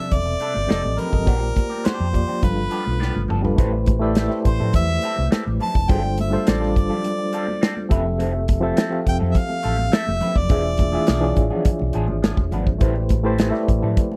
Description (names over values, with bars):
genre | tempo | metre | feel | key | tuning
lush 1970s-style soul | 104 BPM | 4/4 | straight | unclear | A4 = 440 Hz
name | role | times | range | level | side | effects
clear harmonica | melody | 0.0-11.5 s | Bb4 to A5 | -28 LUFS | equal | none
reed electric piano | accompaniment | 0.0-14.2 s | C3 to F5 | -27 LUFS | equal | overdrive, fast tremolo
electric guitar through a small old amp | riff | 0.0-14.2 s | F3 to B4 | -34 LUFS | equal | wah
hollow-body short-scale fingered electric bass | bass | 0.1-13.9 s | E1 to A2 | -26 LUFS | equal | none
modern studio drum kit | drums | 0.1-14.1 s | hi-hat, kick drum, snare drum, toms | -21 LUFS | equal | none
congas | percussion | 0.5-14.2 s | none | -34 LUFS | equal | none
room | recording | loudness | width
studio reverb | dry, close 1970s-style studio recording | -20 LUFS | mono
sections
0.0-3.6 A section; 3.6-14.2 B section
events
drum fill 3.0-3.6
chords
0.0 C69; 0.7 F7; 1.3 Bb69; 2.4 G7; 3.6 Am7; 5.9 G9sus4; 7.9 Fmaj7; 10.5 E7b9; 12.8 Am7